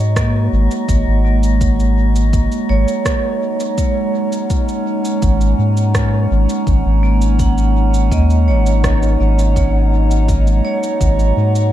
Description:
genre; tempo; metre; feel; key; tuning
ambient dub; 83 BPM; 4/4; straight; unclear; A4 = 442 Hz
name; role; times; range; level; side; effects
warbly tape-like pad; sustained chords; 0.0-11.7 s; G#3 to A#5; -22 LUFS; right 1 dB; chorus, built-in reverb
vibraphone with medium hard mallets; arpeggios; 0.0-11.7 s; A#3 to F#5; -22 LUFS; right 2 dB; tape echo
soft dub sub bass; bass; 0.0-11.7 s; G#1 to G#2; -13 LUFS; equal; none
drifting glass-harmonics texture; texture; 0.0-11.7 s; F#3 to F#4; -26 LUFS; equal; chorus, built-in reverb
electronic kick drum; drums; 0.2-11.2 s; none; -19 LUFS; equal; none
electronic rim click and cabasa; drums; 0.2-11.7 s; none; -27 LUFS; right 1 dB; dub echo
room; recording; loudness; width
little or no reverb; dark, warm production; -12 LUFS; side -12 dB against mid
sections
0.0-11.7 A section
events
none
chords
0.0 G#5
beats
0.16 | 0.89 1.61 2.33 3.06 | 3.78 4.50 5.22 5.95 | 6.67 7.39 8.12 8.84 | 9.56 10.28 11.01

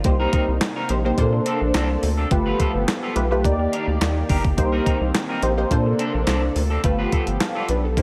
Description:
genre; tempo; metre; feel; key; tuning
early-eighties boogie funk; 106 BPM; 4/4; straight; C dorian; A4 = 440 Hz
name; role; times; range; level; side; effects
funky polysynth comp; accompaniment; 0.0-8.0 s; A3 to F5; -26 LUFS; equal; chorus
brassy analog pad; sustained chords; 0.0-8.0 s; C3 to D5; -32 LUFS; equal; chorus
electric guitar at the edge of break-up; riff; 0.0-7.9 s; B3 to B4; -32 LUFS; equal; lush chorus
rubbery square bass; bass; 0.0-8.0 s; G1 to Bb2; -25 LUFS; equal; none
crisp 8-bit digital drum machine; drums; 0.0-8.0 s; handclaps, hi-hat, kick drum, snare drum; -25 LUFS; equal; gated reverb
room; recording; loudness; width
light reverb, digital ambience; none; -21 LUFS; mono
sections
0.0-8.0 A section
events
none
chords
0.0 Cm7; 1.2 Bbmaj9; 2.3 G9; 3.4 Ebmaj7; 4.6 Cm7; 5.7 Bbmaj9; 6.8 G9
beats
| 0.05 0.61 1.18 1.75 | 2.31 2.88 3.44 4.01 | 4.58 5.14 5.71 6.28 | 6.84 7.41 7.97

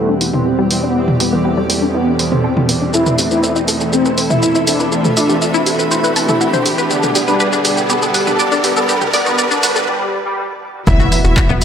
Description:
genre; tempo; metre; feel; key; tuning
melodic techno; 121 BPM; 4/4; straight; unclear; A4 = 440 Hz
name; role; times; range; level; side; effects
wide unison lead; melody; 0.0-11.4 s; G3 to E4; -19 LUFS; equal; ensemble chorus, sidechain pumping, dub echo
warm analog pad; sustained chords; 0.1-11.6 s; B2 to F#5; -24 LUFS; left 1 dB; chorus, tremolo, sidechain pumping
analog synth brass; stabs; 0.0-11.6 s; D3 to C4; -22 LUFS; right 2 dB; chorus, sidechain pumping, dub echo
analog drone; drone; 0.0-9.9 s; E2 to B2; -27 LUFS; left 1 dB; chorus, sidechain pumping
riser and impact; sound effects; 0.2-11.6 s; none; -22 LUFS; right 1 dB; none
granular cloud pad; texture; 0.0-9.9 s; E4 to B5; -25 LUFS; left 1 dB; built-in reverb, sidechain pumping
tight sequenced synth; arpeggios; 0.1-11.6 s; G3 to A5; -20 LUFS; left 1 dB; chorus, sidechain pumping, dub echo
punchy analog drum machine; drums; 0.2-11.6 s; handclaps, hi-hat, shaker, toms; -18 LUFS; equal; none
warm studio violin section; second line; 10.9-11.4 s; E5; -23 LUFS; left 1 dB; sidechain pumping, dub echo
tight sequencer bass; bass; 10.9-11.6 s; E1; -16 LUFS; equal; sidechain pumping
electronic kick drum; drums; 10.9-11.5 s; none; -14 LUFS; equal; none
room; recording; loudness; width
moderate scoring stage reverb, RT60 1.7 s; high-pass filter; -12 LUFS; side -8 dB against mid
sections
0.0-10.9 A section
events
build-up 0.0-10.9; filter sweep on synth arpeggio sound 0.0-10.9; filter sweep on analog synth lead 0.0-10.9; filter sweep on analog synth pad 0.0-10.9; filter sweep 0.0-10.9; riser 0.2-9.9; break 9.9-10.9; impact 10.9-11.6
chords
0.0 C; 6.9 G; 10.9 Esus2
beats
0.46 | 0.95 1.45 1.95 2.44 | 2.94 3.43 3.93 4.42 | 4.92 5.42 5.91 6.41 | 6.90 7.40 7.90 8.39 | 8.89 9.38 9.88 10.38 | 10.87 11.37

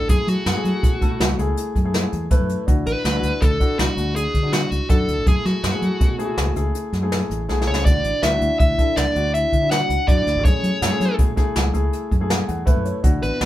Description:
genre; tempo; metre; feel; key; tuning
progressive instrumental, band music in an uneven meter; 162 BPM; 7/4; straight; F# minor; A4 = 442 Hz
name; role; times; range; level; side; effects
dark smooth lead guitar; melody; 0.0-13.5 s; F#4 to F#5; -23 LUFS; equal; overdrive
dark grand piano; accompaniment; 0.0-13.4 s; A3 to F#5; -26 LUFS; left 2 dB; none
fingered electric bass; bass; 0.0-13.5 s; A1 to F#3; -23 LUFS; equal; none
jazz brush drum kit; drums; 0.1-13.5 s; hi-hat, kick drum, snare drum; -20 LUFS; equal; none
vibraphone with soft mallets; second line; 7.7-13.5 s; B3 to F#4; -30 LUFS; right 2 dB; none
room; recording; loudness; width
moderate small room reverb, RT60 0.5 s; band playing live in one room; -17 LUFS; side -14 dB against mid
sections
0.0-13.5 A section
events
drum fill 7.5-7.9; grand piano fill 12.3-13.0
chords
0.1 F#m7; 2.7 Dadd9; 5.3 F#m7; 7.9 Dadd9; 10.4 F#m7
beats
| 0.09 0.46 0.83 1.20 1.57 1.94 2.31 | 2.68 3.05 3.42 3.79 4.16 4.53 4.90 | 5.27 5.64 6.01 6.38 6.75 7.12 7.49 | 7.86 8.23 8.60 8.97 9.34 9.71 10.08 | 10.45 10.82 11.19 11.56 11.93 12.30 12.67 | 13.04 13.41

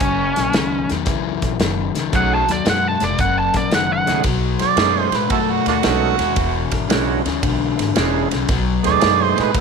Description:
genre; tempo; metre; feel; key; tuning
electric blues shuffle; 113 BPM; 4/4; swing 67% on 8ths; B mixolydian; A4 = 440 Hz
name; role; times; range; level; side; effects
biting lead guitar; melody; 0.0-4.2 s; C#4 to A5; -20 LUFS; right 1 dB; overdrive
overdriven semi-hollow guitar; riff; 0.0-9.6 s; E2 to A3; -22 LUFS; left 12 dB; none
upright bass; bass; 0.0-9.6 s; E1 to A2; -24 LUFS; right 1 dB; none
natural country drum kit; drums; 0.0-9.6 s; hi-hat, kick drum, ride cymbal, snare drum; -22 LUFS; right 1 dB; none
bright tonewheel organ; accompaniment; 2.1-9.5 s; B2 to A4; -23 LUFS; right 13 dB; slow rotary speaker, overdrive
warm harmonica; second line; 4.6-9.6 s; A#3 to D5; -18 LUFS; right 13 dB; overdrive
room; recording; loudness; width
light reverb; 1960s-style stereo with parts hard left and right; -16 LUFS; side -5 dB against mid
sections
0.0-4.3 A section; 4.3-9.6 B section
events
harmonica solo 4.3-9.6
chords
0.0 F#13; 2.1 B13; 3.2 F#69; 4.3 B13; 6.4 E13; 8.5 B13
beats
| 0.01 0.54 1.07 1.60 | 2.13 2.66 3.19 3.72 | 4.25 4.78 5.31 5.84 | 6.37 6.90 7.43 7.96 | 8.49 9.02 9.55

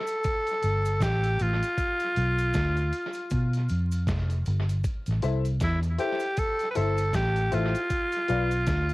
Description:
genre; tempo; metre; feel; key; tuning
roots reggae; 78 BPM; 4/4; swing 58% on 16ths; unclear; A4 = 441 Hz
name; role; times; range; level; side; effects
raspy tenor saxophone; melody; 0.0-8.9 s; E4 to B4; -28 LUFS; equal; cassette tape, dub echo
dusty soul sampler-style drum kit; drums; 0.1-8.9 s; hi-hat, kick drum, snare drum; -33 LUFS; equal; cassette tape, tape echo
cabasa; percussion; 0.1-8.9 s; none; -52 LUFS; right 8 dB; none
vintage muted fingered electric bass; bass; 0.6-8.9 s; F1 to B2; -26 LUFS; equal; none
dark upright piano; stabs; 5.2-8.5 s; E4 to F5; -30 LUFS; left 7 dB; cassette tape
room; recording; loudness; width
little or no reverb; home recording on cassette, vinyl crackle; -24 LUFS; side -20 dB against mid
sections
0.0-8.9 A section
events
none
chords
0.0 N.C.; 1.8 Bdim; 4.8 Am; 7.9 Bdim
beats
0.24 1.01 | 1.78 2.54 3.31 4.07 | 4.84 5.61 6.37 7.14 | 7.90 8.67

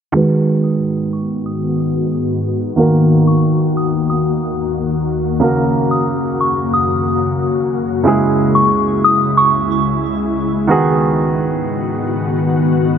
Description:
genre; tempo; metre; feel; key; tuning
dancehall; 91 BPM; 4/4; straight; G# minor; A4 = 440 Hz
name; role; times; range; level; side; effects
warm baby grand piano; accompaniment; 0.1-13.0 s; C#3 to B4; -17 LUFS; right 3 dB; low-pass filter
ethereal airy pad; sustained chords; 1.0-13.0 s; C#2 to F#4; -17 LUFS; left 2 dB; ensemble chorus, built-in reverb, low-pass filter
soft synth bell; melody; 0.6-9.8 s; C#6 to D#6; -17 LUFS; left 1 dB; chorus, phaser, low-pass filter, tape echo
room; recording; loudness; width
moderate lush hall reverb, RT60 2.8 s; none; -13 LUFS; side -8 dB against mid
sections
0.1-13.0 A section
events
filter sweep 0.1-13.0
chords
0.1 G#m7; 2.8 D#m; 5.4 F#; 8.1 C#m; 10.7 G#m7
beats
| 0.14 0.80 1.46 2.12 | 2.78 3.44 4.10 4.76 | 5.42 6.08 6.74 7.39 | 8.05 8.71 9.37 10.03 | 10.69 11.35 12.01 12.67

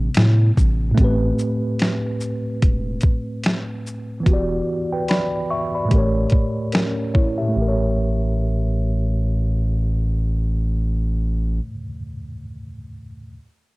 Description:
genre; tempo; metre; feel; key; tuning
lo-fi hip hop; 73 BPM; 4/4; swing 59% on 16ths; unclear; A4 = 440 Hz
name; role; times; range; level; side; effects
tine electric piano; accompaniment; 0.0-13.4 s; A2 to C#6; -23 LUFS; equal; medium stereo tremolo, low-pass filter, cassette tape
soft dub sub bass; bass; 0.0-11.6 s; E1 to A2; -20 LUFS; equal; none
boom bap sampler-style drum kit; drums; 0.1-7.4 s; finger snaps, hi-hat, kick drum, shaker, snare drum; -18 LUFS; equal; cassette tape
room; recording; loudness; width
digital ambience; home recording on cassette; -18 LUFS; side -23 dB against mid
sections
1.0-7.5 A section; 7.5-10.8 B section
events
filter sweep on tine electric piano 1.0-7.5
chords
0.0 Am9; 4.3 Em9; 5.9 A7b9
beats
0.15 | 0.97 1.79 2.62 3.44 | 4.26 5.08 5.90 6.72 | 7.55 8.37 9.19 10.01

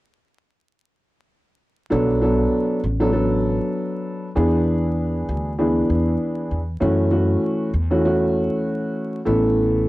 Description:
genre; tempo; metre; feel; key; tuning
hip hop; 98 BPM; 4/4; swing 57% on 16ths; B dorian; A4 = 438 Hz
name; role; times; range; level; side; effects
dark concert grand piano; accompaniment; 1.9-9.9 s; E3 to A4; -19 LUFS; equal; high-pass filter, low-pass filter
upright bass; bass; 1.9-9.9 s; A1 to F#2; -22 LUFS; equal; none
room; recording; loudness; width
moderate studio reverb, RT60 0.6 s; dry, gritty hardware recording, vinyl crackle; -18 LUFS; side -18 dB against mid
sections
1.9-9.9 A section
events
none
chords
1.9 Bm7; 4.4 E7; 6.8 F#m7; 9.3 Asus2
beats
| 1.91 2.52 3.14 3.75 | 4.36 4.97 5.58 6.20 | 6.81 7.42 8.03 8.65 | 9.26 9.87

